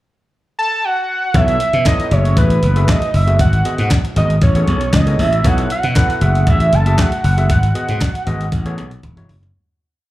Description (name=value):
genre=early-eighties boogie funk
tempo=117 BPM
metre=4/4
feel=straight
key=F# dorian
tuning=A4 = 443 Hz
part: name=fat analog lead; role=melody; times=0.6-9.0 s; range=B4 to A5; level=-19 LUFS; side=right 1 dB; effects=slapback echo
part: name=overdriven tine electric piano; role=accompaniment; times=1.3-9.4 s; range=G#3 to E5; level=-24 LUFS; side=left 2 dB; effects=slapback echo
part: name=slap bass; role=bass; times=1.3-9.5 s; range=E1 to B2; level=-15 LUFS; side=equal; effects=none
part: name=crisp 8-bit digital drum machine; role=drums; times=1.3-9.5 s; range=handclaps, hi-hat, kick drum, snare drum, toms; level=-16 LUFS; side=equal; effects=none
room=little or no reverb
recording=live gig heard through the venue's PA, club reverb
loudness=-12 LUFS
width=side -16 dB against mid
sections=0.0-1.3 pickup bar; 1.3-9.5 verse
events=fade-out 7.5-9.5; drum fill 8.5-9.5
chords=0.0 N.C.; 1.3 B9sus4; 2.1 F#m9; 3.4 G#m7; 4.4 Amaj9; 5.4 B9sus4; 6.2 F#m9; 7.5 G#m7; 8.5 Amaj9; 9.0 E69